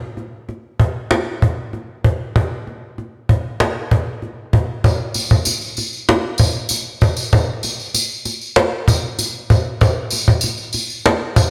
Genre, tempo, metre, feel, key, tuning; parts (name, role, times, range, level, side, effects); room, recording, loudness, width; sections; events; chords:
rock; 97 BPM; 4/4; straight
cajon; drums; 0.2-11.5 s; -18 LUFS; equal
tambourine; percussion; 4.8-11.5 s; -24 LUFS; equal
moderate lush hall reverb, RT60 1.8 s; dreamy mix soaked in reverb; -18 LUFS; mono
0.0-4.8 A section; 4.8-11.5 B section